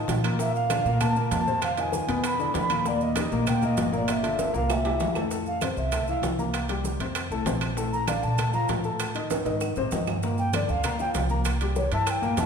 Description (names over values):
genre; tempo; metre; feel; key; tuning
Afro-Cuban jazz; 195 BPM; 4/4; straight; F major; A4 = 441 Hz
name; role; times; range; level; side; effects
warm baby grand piano; accompaniment; 0.0-12.5 s; A2 to Bb5; -29 LUFS; left 3 dB; none
upright bass; bass; 0.0-12.5 s; G1 to Bb2; -30 LUFS; right 1 dB; none
bongos; percussion; 0.1-12.5 s; none; -37 LUFS; left 4 dB; none
congas; percussion; 0.1-12.5 s; none; -34 LUFS; left 1 dB; none
maracas; percussion; 0.1-12.5 s; none; -42 LUFS; right 8 dB; none
timbales; percussion; 0.1-12.5 s; none; -33 LUFS; right 5 dB; none
claves; percussion; 0.2-12.2 s; none; -40 LUFS; right 7 dB; none
breathy alto ocarina; melody; 0.4-12.5 s; C5 to B5; -29 LUFS; right 1 dB; none
room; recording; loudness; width
wet recital hall reverb, RT60 1.8 s; recorded in a church or concert hall; -23 LUFS; side -6 dB against mid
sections
0.0-5.3 A section; 5.3-12.5 B section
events
drum fill 4.4-5.3, 9.3-10.2; ocarina solo 5.3-12.5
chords
0.4 Bbmaj9; 1.6 Fm7; 2.2 E5; 2.9 Eb; 4.1 Gm7; 4.7 C7; 5.3 Fmaj7; 6.5 C5; 7.2 F; 7.8 Bbmaj7; 9.0 Ab5; 9.6 Ab; 10.2 Gm7; 11.5 C7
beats
0.09 | 0.40 0.71 1.01 1.32 | 1.63 1.94 2.24 2.55 | 2.86 3.17 3.47 3.78 | 4.09 4.39 4.70 5.01 | 5.32 5.62 5.93 6.24 | 6.54 6.85 7.16 7.47 | 7.77 8.08 8.39 8.69 | 9.00 9.31 9.62 9.92 | 10.23 10.54 10.84 11.15 | 11.46 11.76 12.07 12.38